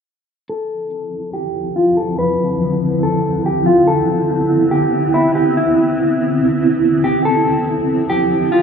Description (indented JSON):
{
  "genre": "hip hop, atmospheric cloud-rap",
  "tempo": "142 BPM",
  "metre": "4/4",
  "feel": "half-time",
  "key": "unclear",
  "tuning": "A4 = 438 Hz",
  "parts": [
    { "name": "mellow electric guitar", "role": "melody", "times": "0.5-8.6 s", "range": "E4 to B4", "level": "-17 LUFS", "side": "left 1 dB", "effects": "low-pass filter, digital delay" },
    { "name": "granular cloud pad", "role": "sustained chords", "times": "1.2-8.6 s", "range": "D3 to E4", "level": "-16 LUFS", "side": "right 1 dB", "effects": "built-in reverb, low-pass filter" }
  ],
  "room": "moderate lush hall reverb, RT60 2.6 s",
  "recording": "rough home demo mix",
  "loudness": "-14 LUFS",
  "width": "side -6 dB against mid",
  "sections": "0.5-8.6 A section",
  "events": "filter sweep 0.5-8.6",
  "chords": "0.5 Dm9; 3.9 Cmaj9; 7.3 Dm9",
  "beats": "| 0.49 0.92 1.34 1.76 | 2.18 2.61 3.03 3.45 | 3.87 4.30 4.72 5.14 | 5.56 5.99 6.41 6.83 | 7.25 7.68 8.10 8.52"
}